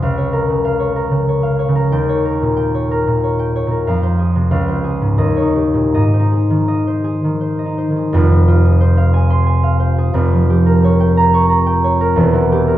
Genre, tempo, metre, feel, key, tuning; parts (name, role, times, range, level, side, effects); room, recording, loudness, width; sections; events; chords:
classical, solo harp piece; 78-97 BPM; 3/4; rubato; Ab major, F minor from 8.1 s; A4 = 440 Hz
concert harp; solo; 0.0-12.8 s; E1 to Db6; -12 LUFS; equal
wet recital hall reverb, RT60 1.3 s; dark, warm production; -12 LUFS; side -13 dB against mid
0.0-8.1 A section; 8.1-12.8 B section
0.0 Bbm/Db; 1.9 Eb7; 3.9 Fm; 4.5 Dbmaj7; 5.2 Eb7; 5.9 Ab; 8.1 Fm; 10.2 Gm7b5/F; 12.2 C7/E (rootless)